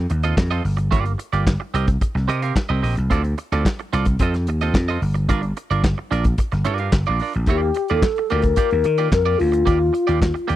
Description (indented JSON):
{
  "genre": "disco",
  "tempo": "110 BPM",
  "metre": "4/4",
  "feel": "straight",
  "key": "unclear",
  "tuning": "A4 = 440 Hz",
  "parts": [
    { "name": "vintage slap bass", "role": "bass", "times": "0.0-10.6 s", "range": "G1 to Eb3", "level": "-21 LUFS", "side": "equal", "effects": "none" },
    { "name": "semi-hollow electric guitar", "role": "accompaniment", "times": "0.1-10.6 s", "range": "Bb3 to F5", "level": "-25 LUFS", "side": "right 8 dB", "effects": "none" },
    { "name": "warm soul drum kit", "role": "drums", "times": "0.1-10.6 s", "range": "handclaps, hi-hat, kick drum, snare drum", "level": "-20 LUFS", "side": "equal", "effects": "none" },
    { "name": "mellow wooden-headed alto flute", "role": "melody", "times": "7.5-10.5 s", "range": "F4 to Bb4", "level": "-19 LUFS", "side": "left 3 dB", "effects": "none" }
  ],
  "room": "little or no reverb",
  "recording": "dry, close 1970s-style studio recording",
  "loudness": "-17 LUFS",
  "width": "side -13 dB against mid",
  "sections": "0.0-7.5 A section; 7.5-10.6 B section",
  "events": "none",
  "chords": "0.0 F7; 0.6 Gm7; 1.7 Cm7; 3.1 Dm7; 4.2 F7; 5.0 Gm7; 7.5 Ebmaj9"
}